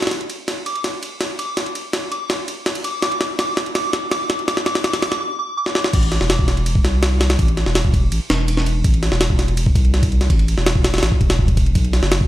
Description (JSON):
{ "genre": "drum and bass, jungle", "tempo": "165 BPM", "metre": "4/4", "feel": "straight", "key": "A dorian", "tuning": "A4 = 435 Hz", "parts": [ { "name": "jungle sampler-style drum kit", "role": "drums", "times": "0.0-12.3 s", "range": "crash cymbal, kick drum, ride cymbal, snare drum", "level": "-18 LUFS", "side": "equal", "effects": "none" }, { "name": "soft synth bell", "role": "melody", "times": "0.7-5.9 s", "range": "D6", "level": "-25 LUFS", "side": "equal", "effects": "chorus, dub echo" }, { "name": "saturated sub bass", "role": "bass", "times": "5.9-12.3 s", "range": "E1 to C2", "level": "-18 LUFS", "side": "equal", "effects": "none" } ], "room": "little or no reverb", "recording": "none", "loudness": "-16 LUFS", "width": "side -14 dB against mid", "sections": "0.0-5.9 A section; 5.9-12.3 B section", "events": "build-up 0.0-5.9; drum fill 0.1-5.2, 5.7; drop 5.9-12.3", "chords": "0.0 N.C.; 5.9 Am; 11.8 B5" }